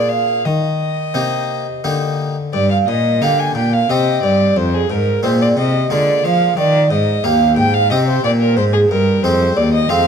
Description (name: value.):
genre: classical, baroque-style sonata movement with continuo.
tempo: 90 BPM.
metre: 3/4.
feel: straight.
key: Eb major.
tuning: A4 = 440 Hz.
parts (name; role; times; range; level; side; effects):
warm violin; melody; 0.0-10.1 s; Ab4 to Ab5; -23 LUFS; left 10 dB; none.
mellow hollow baroque flute; second line; 0.0-10.1 s; Ab4 to Ab5; -17 LUFS; right 4 dB; none.
harpsichord; accompaniment; 0.0-10.1 s; Eb2 to C5; -20 LUFS; left 4 dB; none.
rich cello; bass; 0.0-10.1 s; Eb2 to F3; -17 LUFS; equal; none.
room: moderate recital hall reverb, RT60 1.7 s.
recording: close, detailed microphones.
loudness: -13 LUFS.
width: side -7 dB against mid.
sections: 0.0-2.5 A section; 2.5-10.1 A section.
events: none.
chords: 0.5 Eb; 2.5 Gm; 3.9 Cm; 4.6 Fm; 5.9 Bb7/D; 6.6 Eb; 7.9 C5; 8.6 Ab.